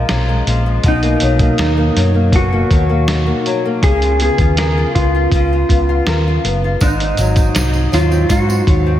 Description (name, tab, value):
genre	indie pop, bedroom pop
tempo	80 BPM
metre	4/4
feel	straight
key	B lydian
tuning	A4 = 436 Hz
part	mellow electric guitar	melody	0.0-9.0 s	D#4 to A#4	-19 LUFS	right 1 dB	wide subtle chorus, tape echo
part	nylon-string guitar	accompaniment	0.0-9.0 s	G#2 to A#4	-19 LUFS	left 3 dB	lush chorus, warbly pitch drift
part	hollow-body short-scale fingered electric bass	bass	0.1-9.0 s	F#1 to G#2	-16 LUFS	equal	none
part	lo-fi sampler-style drum kit	drums	0.1-8.8 s	hi-hat, kick drum, snare drum	-18 LUFS	equal	none
part	tambourine	percussion	6.8-8.7 s	none	-31 LUFS	right 5 dB	none
room	moderate lush hall reverb, RT60 2.9 s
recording	dreamy mix soaked in reverb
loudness	-12 LUFS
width	side -12 dB against mid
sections	0.0-9.0 A section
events	none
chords	0.0 A#m7; 0.8 Bmaj7; 3.8 C#13; 6.8 G#7